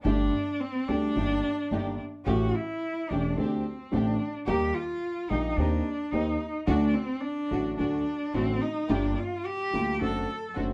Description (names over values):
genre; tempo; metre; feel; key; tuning
tango; 108 BPM; 4/4; rubato; G minor; A4 = 439 Hz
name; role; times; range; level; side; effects
warm cello; second line; 0.0-10.5 s; C4 to A4; -32 LUFS; equal; none
upright bass; bass; 0.0-10.7 s; E1 to Eb2; -34 LUFS; equal; none
dark upright piano; accompaniment; 0.1-10.7 s; E1 to G4; -32 LUFS; equal; none
warm studio string section; stabs; 0.1-10.7 s; A3 to G4; -40 LUFS; equal; none
room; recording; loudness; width
light reverb; dark, warm production; -28 LUFS; mono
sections
0.0-10.7 A section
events
cello solo 0.0-10.7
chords
0.0 Gsus2; 1.2 Ebmaj7/G; 2.3 A7; 3.4 D7sus4; 4.5 Eb; 5.6 Cm7/Eb; 6.7 D; 8.9 Gm7; 10.0 D7/F#